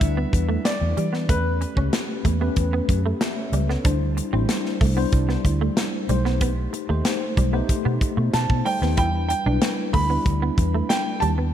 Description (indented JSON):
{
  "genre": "polished 1980s jazz-funk pop",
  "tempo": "94 BPM",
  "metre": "4/4",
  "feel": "straight",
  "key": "E minor",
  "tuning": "A4 = 440 Hz",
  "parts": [
    { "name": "clear grand piano", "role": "melody", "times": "0.0-1.9, 8.3-11.3 s", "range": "B4 to B5", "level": "-27 LUFS", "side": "right 2 dB", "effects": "ping-pong delay" },
    { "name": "tine electric piano", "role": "accompaniment", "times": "0.0-11.5 s", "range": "G3 to E5", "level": "-27 LUFS", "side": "left 4 dB", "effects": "medium stereo tremolo, analog chorus" },
    { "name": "vintage muted fingered electric bass", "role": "bass", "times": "0.0-11.5 s", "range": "A1 to E3", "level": "-23 LUFS", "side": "equal", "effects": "none" },
    { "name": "modern studio drum kit", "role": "drums", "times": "0.0-11.4 s", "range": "hi-hat, kick drum, snare drum", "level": "-24 LUFS", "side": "equal", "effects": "gated reverb" },
    { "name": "semi-hollow electric guitar", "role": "riff", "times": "0.2-11.5 s", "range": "G3 to E4", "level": "-30 LUFS", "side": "right 6 dB", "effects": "ensemble chorus" }
  ],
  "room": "light reverb, studio reverb",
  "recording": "none",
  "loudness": "-20 LUFS",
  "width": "side -10 dB against mid",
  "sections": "0.0-11.5 A section",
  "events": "none",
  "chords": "0.0 Em7; 1.3 A9; 3.9 D9sus4; 6.1 B7b9b13; 9.0 Em7"
}